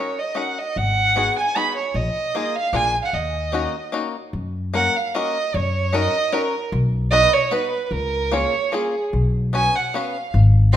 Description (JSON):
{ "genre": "musette waltz", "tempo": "151 BPM", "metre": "3/4", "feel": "swing 54% on 8ths, rubato", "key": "Eb minor, F# major from 4.3 s", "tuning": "A4 = 440 Hz", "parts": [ { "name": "dark violin", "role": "melody", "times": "0.0-10.8 s", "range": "G#4 to B#5", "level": "-20 LUFS", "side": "right 3 dB", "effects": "none" }, { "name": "bluegrass banjo", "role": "accompaniment", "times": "0.0-10.8 s", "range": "Bb3 to B4", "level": "-26 LUFS", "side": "left 6 dB", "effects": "none" }, { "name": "upright bass", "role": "bass", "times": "0.8-10.8 s", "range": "Ab1 to F#2", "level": "-20 LUFS", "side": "left 1 dB", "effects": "none" } ], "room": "light reverb", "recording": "minimal, uncompressed stereo recording", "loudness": "-18 LUFS", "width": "side -11 dB against mid", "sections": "0.0-4.3 A section; 4.3-10.8 B section", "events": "none", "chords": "0.0 Ebm7; 0.8 Abm7; 1.9 Bb7sus4; 2.7 Bb7; 3.1 Ebm7; 4.3 F#; 5.6 D#m7/F#; 6.7 B; 7.9 C#6; 9.1 Bsus2", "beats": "0.36 | 0.76 1.15 1.55 | 1.95 2.34 2.73 | 3.13 3.53 3.93 | 4.34 4.75 5.15 | 5.55 5.95 6.34 | 6.73 7.12 7.52 | 7.92 8.32 8.72 | 9.13 9.54 9.94 | 10.34 10.74" }